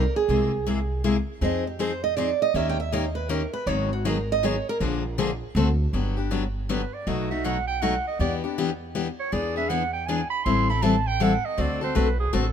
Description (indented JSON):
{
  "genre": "acoustic string swing (jazz manouche)",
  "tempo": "159 BPM",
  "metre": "3/4",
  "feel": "swing 63% on 8ths",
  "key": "Eb major, G major from 5.9 s",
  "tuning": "A4 = 440 Hz",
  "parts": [
    { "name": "picked steel-string acoustic guitar", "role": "melody", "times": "0.0-4.8 s", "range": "Gb4 to G5", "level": "-26 LUFS", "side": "right 6 dB", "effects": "none" },
    { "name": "picked steel-string acoustic guitar", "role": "accompaniment", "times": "0.0-12.4 s", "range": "B2 to Bb4", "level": "-26 LUFS", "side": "left 4 dB", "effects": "none" },
    { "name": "upright bass", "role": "bass", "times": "0.0-12.5 s", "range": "G1 to F2", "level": "-28 LUFS", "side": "right 1 dB", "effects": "none" },
    { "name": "clear clarinet", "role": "second line", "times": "6.7-12.5 s", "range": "Ab4 to C6", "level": "-28 LUFS", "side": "right 5 dB", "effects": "none" }
  ],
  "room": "light reverb",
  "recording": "minimal, uncompressed stereo recording",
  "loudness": "-22 LUFS",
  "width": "side -8 dB against mid",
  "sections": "0.0-5.9 A section; 5.9-12.5 A section",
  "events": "steel-string acoustic guitar solo 0.0-5.9; clarinet solo 5.9-12.5",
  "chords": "0.3 Caug7; 1.4 Fm7; 2.5 Eb7; 3.7 Abm7; 4.8 Bb7; 5.6 D7; 5.9 Gmaj7; 7.1 B7; 8.2 Em7; 9.3 E7; 10.5 Am7; 11.6 D7",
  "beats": "| 0.29 0.67 1.04 | 1.42 1.79 2.17 | 2.55 2.92 3.30 | 3.68 4.05 4.43 | 4.81 5.18 5.56 | 5.94 6.31 6.69 | 7.07 7.45 7.82 | 8.20 8.58 8.95 | 9.33 9.71 10.08 | 10.46 10.83 11.21 | 11.59 11.96 12.34"
}